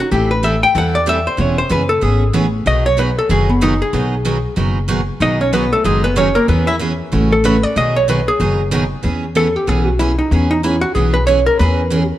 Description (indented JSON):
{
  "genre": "country, western swing",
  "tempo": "188 BPM",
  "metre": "4/4",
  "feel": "swing 61% on 8ths",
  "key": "E major",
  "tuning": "A4 = 440 Hz",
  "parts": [
    { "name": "hollow-body jazz guitar", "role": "melody", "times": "0.0-12.1 s", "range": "G#3 to G5", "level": "-16 LUFS", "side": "equal", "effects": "none" },
    { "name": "picked steel-string acoustic guitar", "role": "accompaniment", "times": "0.1-12.0 s", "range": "B2 to A4", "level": "-19 LUFS", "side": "right 2 dB", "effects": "none" },
    { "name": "upright bass", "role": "bass", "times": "0.1-12.1 s", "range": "E1 to E2", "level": "-18 LUFS", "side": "left 1 dB", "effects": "none" }
  ],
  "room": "moderate echo chamber reverb, RT60 2.6 s",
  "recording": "none",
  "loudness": "-13 LUFS",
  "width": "side -13 dB against mid",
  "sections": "0.0-9.0 A section; 9.0-12.2 A section",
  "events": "hollow-body jazz guitar solo 0.0-9.0, 9.0-12.2",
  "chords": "0.1 Am7; 1.4 E6; 2.7 B6; 6.5 E6; 7.1 A6; 7.8 B6; 9.0 E6"
}